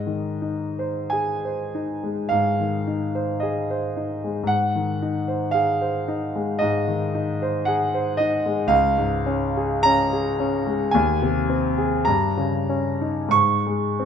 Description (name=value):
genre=classical, romantic nocturne for solo piano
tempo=41-59 BPM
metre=4/4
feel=rubato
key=Ab major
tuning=A4 = 436 Hz
part: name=clear concert grand piano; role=solo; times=0.0-14.1 s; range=Db2 to Db6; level=-20 LUFS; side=equal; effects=none
room=moderate recital hall reverb, RT60 1.6 s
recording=close, detailed microphones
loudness=-20 LUFS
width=side -7 dB against mid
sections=0.0-14.1 A section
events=none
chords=0.0 Ab; 8.7 Db; 10.9 Ab/Eb; 12.1 Eb7/G; 13.3 N.C.